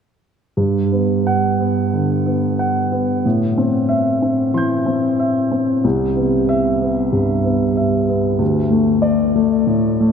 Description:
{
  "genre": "neoclassical minimalist piano",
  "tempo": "92 BPM",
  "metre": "4/4",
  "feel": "rubato",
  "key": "G major",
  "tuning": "A4 = 445 Hz",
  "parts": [
    { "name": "dark baby grand piano", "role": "solo", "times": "0.6-10.1 s", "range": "C2 to G6", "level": "-15 LUFS", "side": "equal", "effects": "none" }
  ],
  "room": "wet cathedral reverb, RT60 5.4 s",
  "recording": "recorded in a church or concert hall",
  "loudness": "-15 LUFS",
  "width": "side -7 dB against mid",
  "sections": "0.6-10.1 A section",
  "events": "none",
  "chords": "0.6 Gmaj7; 3.2 Am7; 5.8 Cmaj7; 8.4 D5"
}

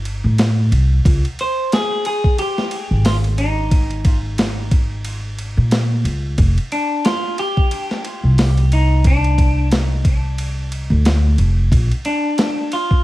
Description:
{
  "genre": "trip hop",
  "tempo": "90 BPM",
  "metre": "4/4",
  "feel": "swing 58% on 16ths",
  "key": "unclear",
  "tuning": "A4 = 441 Hz",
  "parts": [
    { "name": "upright bass", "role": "bass", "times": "0.0-11.9 s", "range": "F1 to Bb2", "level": "-16 LUFS", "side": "equal", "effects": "none" },
    { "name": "dusty soul sampler-style drum kit", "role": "drums", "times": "0.1-13.0 s", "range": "hi-hat, kick drum, ride cymbal, snare drum", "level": "-19 LUFS", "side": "equal", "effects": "none" },
    { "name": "semi-hollow electric guitar", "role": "melody", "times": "1.4-13.0 s", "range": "D4 to C5", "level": "-22 LUFS", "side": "equal", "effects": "tape echo" }
  ],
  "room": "digital ambience",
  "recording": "vinyl crackle",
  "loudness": "-15 LUFS",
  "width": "side -16 dB against mid",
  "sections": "0.0-13.0 A section",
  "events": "none",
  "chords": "0.0 C5; 1.0 Dbsus2 (rootless); 6.4 Fsus2 (rootless); 11.7 Bb"
}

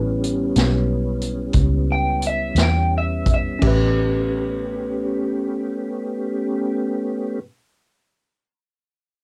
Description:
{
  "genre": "slow blues",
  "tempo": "56-63 BPM (dotted quarters)",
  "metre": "12/8",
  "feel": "straight",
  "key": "A mixolydian",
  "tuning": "A4 = 438 Hz",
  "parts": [
    { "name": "tine electric piano", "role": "accompaniment", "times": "0.0-7.4 s", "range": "C#4 to B4", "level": "-29 LUFS", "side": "equal", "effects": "cassette tape" },
    { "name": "tonewheel organ", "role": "sustained chords", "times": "0.0-7.4 s", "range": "G3 to G4", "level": "-28 LUFS", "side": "equal", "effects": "chorus vibrato, slow rotary speaker, cassette tape" },
    { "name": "vintage muted fingered electric bass", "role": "bass", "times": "0.0-7.4 s", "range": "A1 to E2", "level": "-24 LUFS", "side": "equal", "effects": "none" },
    { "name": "vintage drum kit", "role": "drums", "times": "0.2-3.8 s", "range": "crash cymbal, hi-hat, kick drum, snare drum", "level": "-24 LUFS", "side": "equal", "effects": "cassette tape" },
    { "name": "electric guitar through a small old amp", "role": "melody", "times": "1.9-3.7 s", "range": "E5 to G5", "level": "-26 LUFS", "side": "equal", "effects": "analog chorus, cassette tape" }
  ],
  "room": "little or no reverb",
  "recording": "home recording on cassette",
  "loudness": "-21 LUFS",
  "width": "mono",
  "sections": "0.0-3.6 A section; 3.6-8.0 B section",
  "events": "slowing down 0.0-3.6; clean electric guitar solo 0.0-3.6",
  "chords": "0.0 A9"
}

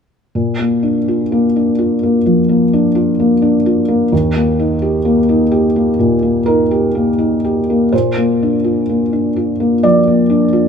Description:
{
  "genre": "neoclassical minimalist piano",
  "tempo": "64 BPM",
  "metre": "4/4",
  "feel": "rubato",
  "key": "Bb major",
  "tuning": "A4 = 444 Hz",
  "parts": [
    { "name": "felt-muted upright piano", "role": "solo", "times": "0.3-10.7 s", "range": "Eb2 to D5", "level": "-12 LUFS", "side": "equal", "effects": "none" }
  ],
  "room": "little or no reverb",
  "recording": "minimal, uncompressed stereo recording",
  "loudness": "-12 LUFS",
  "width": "side -7 dB against mid",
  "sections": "0.3-7.9 A section; 7.9-10.7 B section",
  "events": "none",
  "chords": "0.3 Bb; 4.1 Eb; 7.9 Bb"
}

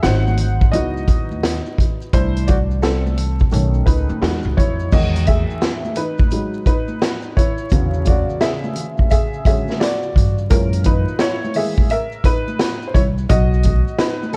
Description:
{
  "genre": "hip hop, jazz-hop",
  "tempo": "86 BPM",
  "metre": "4/4",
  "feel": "swing 64% on 16ths",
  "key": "E major",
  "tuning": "A4 = 439 Hz",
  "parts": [
    { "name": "warm upright piano", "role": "accompaniment", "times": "0.0-14.4 s", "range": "A#2 to F#5", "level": "-24 LUFS", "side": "equal", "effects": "none" },
    { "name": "upright bass", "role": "bass", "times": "0.0-13.8 s", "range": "G#1 to G2", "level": "-21 LUFS", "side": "equal", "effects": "none" },
    { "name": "vintage drum kit", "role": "drums", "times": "0.0-14.4 s", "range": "crash cymbal, hi-hat, kick drum, snare drum", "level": "-20 LUFS", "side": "equal", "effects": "none" },
    { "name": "maracas and congas", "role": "percussion", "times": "0.0-14.3 s", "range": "none", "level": "-33 LUFS", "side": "equal", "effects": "none" }
  ],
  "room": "small room ambience",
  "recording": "worn, warbling old tape, cassette tape, vinyl crackle, warbly pitch drift",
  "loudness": "-18 LUFS",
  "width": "mono",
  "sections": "0.0-4.9 A section; 4.9-14.4 B section",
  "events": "upright piano solo 0.0-4.9, 4.9-14.4",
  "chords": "0.0 G#7; 0.7 C#m11; 2.1 C69; 3.5 B7; 4.2 Emaj9; 7.7 E13; 10.5 F#7; 13.3 B"
}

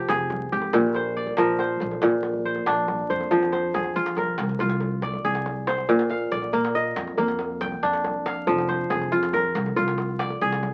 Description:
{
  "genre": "west african traditional, West African string and xylophone music",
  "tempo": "93 BPM (dotted quarters)",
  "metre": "12/8",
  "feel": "straight",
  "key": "F dorian",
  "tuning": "A4 = 440 Hz",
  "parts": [
    { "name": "kora", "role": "arpeggios", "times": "0.0-10.7 s", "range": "Bb2 to G5", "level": "-25 LUFS", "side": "equal", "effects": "none" },
    { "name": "upright bass", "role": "bass", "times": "0.1-10.7 s", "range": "F1 to F3", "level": "-34 LUFS", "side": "equal", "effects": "none" },
    { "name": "djembe", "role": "percussion", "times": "0.1-10.7 s", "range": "none", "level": "-36 LUFS", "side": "equal", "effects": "none" }
  ],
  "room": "moderate club reverb, RT60 0.5 s",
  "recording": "very old 78 rpm record, vinyl crackle, nothing above 10.8 kHz",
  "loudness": "-24 LUFS",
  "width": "mono",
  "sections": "0.0-3.3 A section; 3.3-10.7 B section",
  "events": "none",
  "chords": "0.0 Fm; 0.7 Bb; 3.3 Fm; 5.9 Bb; 8.5 Fm"
}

